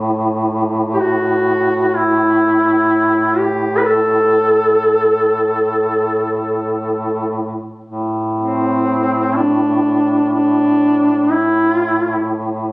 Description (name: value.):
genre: caucasian folk, Caucasian lament.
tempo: free time.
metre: none.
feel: none.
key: A dorian.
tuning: A4 = 440 Hz.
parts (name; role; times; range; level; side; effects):
warm duduk; drone; 0.0-12.7 s; A2; -20 LUFS; equal; none.
mellow duduk; melody; 0.9-12.5 s; C4 to B4; -13 LUFS; equal; none.
room: moderate recital hall reverb, RT60 1.4 s.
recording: recorded on a phone in the room, club reverb, compression.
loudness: -13 LUFS.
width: side -24 dB against mid.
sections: 0.0-7.8 A section; 7.8-12.7 B section.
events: none.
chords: none.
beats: free time.